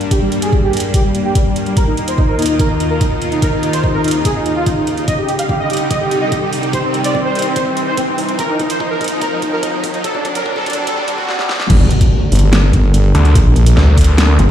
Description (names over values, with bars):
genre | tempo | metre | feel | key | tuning
heavy wobble dubstep | 145 BPM | 4/4 | half-time | unclear | A4 = 439 Hz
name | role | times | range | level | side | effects
soft supersaw | melody | 0.0-11.2 s | G3 to F5 | -17 LUFS | equal | low-pass filter, dub echo
supersaw pad | sustained chords | 0.0-14.5 s | C2 to Bb4 | -22 LUFS | equal | phaser, vintage 12-bit sampler grit, sidechain pumping, low-pass filter
dubstep drum kit | drums | 0.0-14.5 s | crash cymbal, hi-hat, snare drum | -22 LUFS | right 1 dB | none
riser and impact | sound effects | 0.8-13.4 s | none | -23 LUFS | equal | none
electronic kick drum | drums | 0.1-14.1 s | none | -15 LUFS | equal | none
wobble bass | bass | 11.7-14.5 s | G1 to Bb1 | -10 LUFS | equal | chorus, overdrive
snarling distorted saw bass | bass | 13.1-14.4 s | D2 | -9 LUFS | equal | distortion, overdrive
room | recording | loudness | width
light reverb | played on a big sound system in a bare room, stone room reverb, high-pass filter | -12 LUFS | side -10 dB against mid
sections
0.0-11.7 A section; 11.7-14.5 B section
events
build-up 0.0-11.7; filter sweep on supersaw synth 0.0-11.7; filter sweep 0.0-11.7; riser 0.8-11.3; drum fill 5.1-11.3, 11.3-11.7; drop 11.7-14.5; impact 11.7-13.4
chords
0.0 Gm; 1.8 Ebsus2; 5.1 Cm; 8.4 Abadd9; 10.0 D7; 11.7 Gmadd9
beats
| 0.11 0.53 0.94 1.35 | 1.77 2.18 2.60 3.01 | 3.42 3.84 4.25 4.66 | 5.08 5.49 5.91 6.32 | 6.73 7.15 7.56 7.97 | 8.39 8.80 9.22 9.63 | 10.04 10.46 10.87 11.29 | 11.70 12.11 12.53 12.94 | 13.35 13.77 14.18